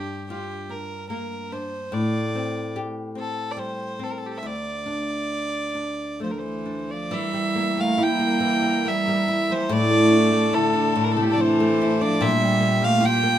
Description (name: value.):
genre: celtic folk, Celtic slow air.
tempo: 65-76 BPM.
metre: 3/4.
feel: rubato.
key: unclear.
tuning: A4 = 440 Hz.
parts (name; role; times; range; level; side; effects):
rich fiddle; melody; 0.0-13.4 s; G4 to G5; -25 LUFS; right 1 dB; none.
flamenco guitar; accompaniment; 0.0-13.4 s; D2 to G4; -24 LUFS; left 1 dB; none.
clear cello; second line; 6.2-13.4 s; Bb2 to Bb3; -26 LUFS; right 3 dB; none.
rich chamber string section; sustained chords; 7.1-13.4 s; Bb2 to Bb4; -30 LUFS; left 3 dB; none.
room: wet small room ambience, RT60 0.5 s.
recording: minimal, uncompressed stereo recording.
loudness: -20 LUFS.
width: side -11 dB against mid.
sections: 0.0-7.1 A section; 7.1-13.4 B section.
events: none.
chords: 0.0 Gm7; 1.9 Am7; 4.4 D5; 7.1 Edim; 9.7 Asus4; 12.2 Gm7/Bb.